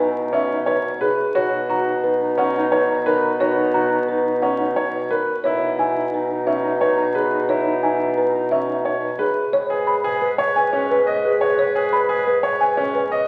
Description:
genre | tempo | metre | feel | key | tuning
classical, minimalist pattern music | 176 BPM | 6/4 | straight | G# minor from 9.5 s | A4 = 440 Hz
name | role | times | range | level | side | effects
folk marimba with soft mallets | melody | 0.0-13.2 s | G#4 to B5 | -24 LUFS | equal | none
warm clarinet | second line | 0.0-13.2 s | D#4 to B4 | -29 LUFS | equal | none
mellow bassoon | bass | 0.0-13.3 s | G#2 to B2 | -26 LUFS | equal | none
bright grand piano | arpeggios | 0.3-13.3 s | C#4 to D#5 | -26 LUFS | equal | none
room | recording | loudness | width
wet scoring stage reverb, RT60 2.0 s | very old 78 rpm record, vinyl crackle | -20 LUFS | mono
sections
0.0-9.5 A section; 9.5-13.3 B section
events
none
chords
0.0 Emaj7(no3)/B (rootless); 1.4 Bmaj7; 5.4 Emaj7/B; 9.5 G#m

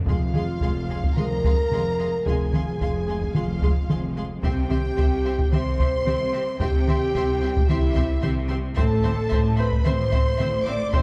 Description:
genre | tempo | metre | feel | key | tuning
cinematic, epic orchestral film score | 111 BPM | 4/4 | straight | unclear | A4 = 440 Hz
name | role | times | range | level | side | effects
clear symphonic violin section | melody | 0.1-11.0 s | E5 to D6 | -39 LUFS | equal | none
rich symphonic violin section | second line | 0.1-11.0 s | E5 to C6 | -40 LUFS | equal | none
clear symphonic viola section | accompaniment | 0.1-11.0 s | Ab3 to C5 | -36 LUFS | equal | none
mellow French horn section | sustained chords | 0.1-11.0 s | E4 to D5 | -29 LUFS | equal | none
clear symphonic double bass section | bass | 0.1-11.0 s | F1 to C2 | -31 LUFS | equal | none
rich symphonic cello section | bass | 0.1-11.0 s | F2 to C3 | -33 LUFS | equal | none
taiko ensemble | drums | 0.1-11.0 s | none | -26 LUFS | equal | none
room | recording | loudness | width
moderate scoring stage reverb, RT60 1.6 s | dark, warm production | -23 LUFS | mono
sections
0.1-11.0 A section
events
none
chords
0.1 Fm; 4.4 C; 8.8 Am

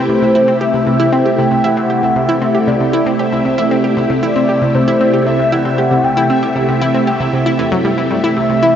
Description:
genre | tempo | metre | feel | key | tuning
ambient, sequencer-driven space music | 116 BPM | 4/4 | straight | C lydian | A4 = 441 Hz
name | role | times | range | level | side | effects
phased string machine | sustained chords | 0.0-8.8 s | C3 to G4 | -15 LUFS | equal | ensemble chorus, phaser
analog pluck | riff | 0.0-8.7 s | C3 to G4 | -17 LUFS | equal | chorus, tape echo
bubbling stepped-filter texture | texture | 0.0-8.8 s | E5 | -25 LUFS | left 1 dB | chorus, built-in reverb
mellow horn-like synth lead | melody | 0.1-8.8 s | C5 to G5 | -17 LUFS | equal | lush chorus, tape echo
room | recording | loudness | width
wet cathedral reverb, RT60 6.8 s | in a vast, echoing space, nothing above 7.6 kHz | -11 LUFS | side -9 dB against mid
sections
0.0-8.8 A section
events
none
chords
0.0 C6

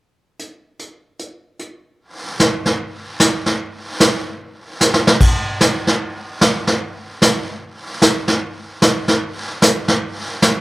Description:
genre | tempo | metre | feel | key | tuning
country | 149 BPM | 4/4 | swing 65% on 8ths | none | none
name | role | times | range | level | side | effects
vintage brush drum kit | drums | 0.4-10.6 s | brushed snare drum, crash cymbal, hi-hat, kick drum, snare drum | -14 LUFS | equal | none
room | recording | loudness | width
light reverb | none | -14 LUFS | side -19 dB against mid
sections
0.4-2.0 A section; 2.0-5.2 B section; 5.2-10.6 C section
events
drum fill 4.8-5.2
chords
none

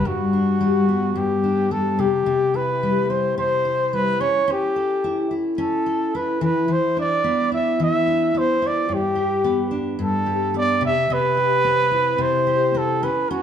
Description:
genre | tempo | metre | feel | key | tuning
acoustic pop | 109 BPM | 4/4 | swing 55% on 16ths | G major | A4 = 439 Hz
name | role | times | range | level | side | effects
breathy trumpet | melody | 0.0-13.4 s | F#4 to E5 | -20 LUFS | right 1 dB | none
fingerpicked steel-string acoustic guitar | accompaniment | 0.0-13.4 s | G2 to B4 | -22 LUFS | left 2 dB | none
room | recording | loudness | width
wet stone room reverb, RT60 1.1 s | band playing live in one room | -18 LUFS | side -8 dB against mid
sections
0.1-13.4 A section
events
none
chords
0.1 G; 2.0 C; 4.2 A/C#; 6.4 E5; 8.9 G; 10.8 C

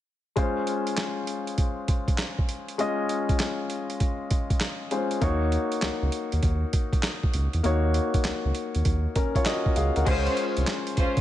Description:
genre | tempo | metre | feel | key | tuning
R&B, new jack swing | 99 BPM | 4/4 | swing 65% on 16ths | Db major | A4 = 439 Hz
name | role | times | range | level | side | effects
warm concert grand piano | accompaniment | 0.4-11.2 s | Ab3 to Gb5 | -28 LUFS | left 3 dB | none
boom bap sampler-style drum kit | drums | 0.4-11.2 s | crash cymbal, handclaps, hi-hat, kick drum, snare drum | -27 LUFS | right 1 dB | none
round analog bass | bass | 5.2-11.2 s | C2 to Fb2 | -25 LUFS | right 1 dB | none
muted studio string section | stabs | 10.1-11.2 s | Db4 to C5 | -29 LUFS | equal | none
room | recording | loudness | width
light reverb | nothing above 10.7 kHz | -24 LUFS | side -13 dB against mid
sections
0.4-10.1 A section; 10.1-11.2 B section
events
none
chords
0.4 Dbmaj7; 5.2 Ebm7; 10.1 Dbmaj7

